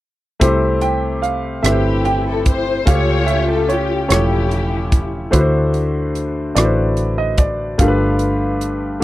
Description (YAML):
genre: slow gospel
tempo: 49 BPM (dotted quarters)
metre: 6/8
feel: straight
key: C major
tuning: A4 = 442 Hz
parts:
  - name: clear upright piano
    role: accompaniment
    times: 0.4-9.0 s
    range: G2 to C#5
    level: -19 LUFS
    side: left 1 dB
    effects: none
  - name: fingered electric bass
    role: bass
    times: 0.4-9.0 s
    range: E1 to D2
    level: -20 LUFS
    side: equal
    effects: none
  - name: crisp fusion drum kit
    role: drums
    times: 0.4-8.8 s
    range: hi-hat, kick drum, rim click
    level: -16 LUFS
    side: equal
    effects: none
  - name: warm baby grand piano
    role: melody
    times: 0.8-9.0 s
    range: C5 to G5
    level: -24 LUFS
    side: right 3 dB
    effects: none
  - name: dark symphonic string section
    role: melody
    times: 1.6-5.3 s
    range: E4 to C#5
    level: -21 LUFS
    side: left 4 dB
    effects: none
room: little or no reverb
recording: dry, close 1970s-style studio recording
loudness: -14 LUFS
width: side -16 dB against mid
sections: 0.4-9.0 A section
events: none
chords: 0.4 C6; 2.9 A7b13/C#; 5.3 D9; 7.8 G9